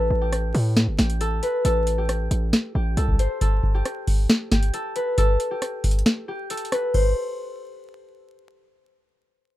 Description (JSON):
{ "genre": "hip hop, trap", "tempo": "136 BPM", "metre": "4/4", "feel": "half-time", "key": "A minor", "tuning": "A4 = 440 Hz", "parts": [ { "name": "concert harp", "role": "melody", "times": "0.0-8.9 s", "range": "G4 to C5", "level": "-26 LUFS", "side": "left 1 dB", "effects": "low-pass filter" }, { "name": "hard-hitting 808-style bass", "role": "bass", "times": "0.0-3.2 s", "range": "G1 to A2", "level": "-22 LUFS", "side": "equal", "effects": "none" }, { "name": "booming analog drum machine", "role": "drums", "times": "0.3-7.1 s", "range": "crash cymbal, hi-hat, kick drum, rim click, snare drum", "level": "-20 LUFS", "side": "equal", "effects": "none" } ], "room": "little or no reverb", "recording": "rough home demo mix, vinyl crackle", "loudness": "-20 LUFS", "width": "side -15 dB against mid", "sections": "0.0-6.9 A section; 6.9-9.6 B section", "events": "break 6.1-6.9", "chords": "0.0 A7(no3); 3.4 N.C." }